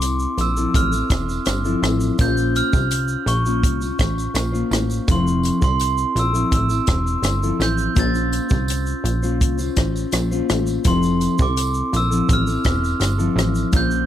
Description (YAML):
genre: indie pop, bedroom pop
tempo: 83 BPM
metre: 4/4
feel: straight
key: F major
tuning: A4 = 441 Hz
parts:
  - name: glockenspiel with soft plastic mallets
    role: melody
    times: 0.0-14.1 s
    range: C6 to A6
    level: -25 LUFS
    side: right 2 dB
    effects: wide subtle chorus
  - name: mellow electric guitar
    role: accompaniment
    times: 0.0-14.1 s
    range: F3 to C5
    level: -23 LUFS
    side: left 3 dB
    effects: lush chorus, warbly pitch drift
  - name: plucky analog bass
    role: bass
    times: 0.0-14.1 s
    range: E1 to C2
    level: -22 LUFS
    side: equal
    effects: none
  - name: compact cocktail drum kit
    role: drums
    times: 0.0-14.1 s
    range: hi-hat, kick drum, rim click, shaker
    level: -21 LUFS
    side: equal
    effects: none
  - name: tambourine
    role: percussion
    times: 0.0-13.9 s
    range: none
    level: -38 LUFS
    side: right 5 dB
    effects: none
room: little or no reverb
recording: none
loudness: -17 LUFS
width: side -11 dB against mid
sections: 0.0-14.1 A section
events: none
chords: 0.0 Fmaj7; 2.2 Bbmadd9; 5.1 Fmaj7; 8.0 Bbmadd9; 10.9 Fmaj7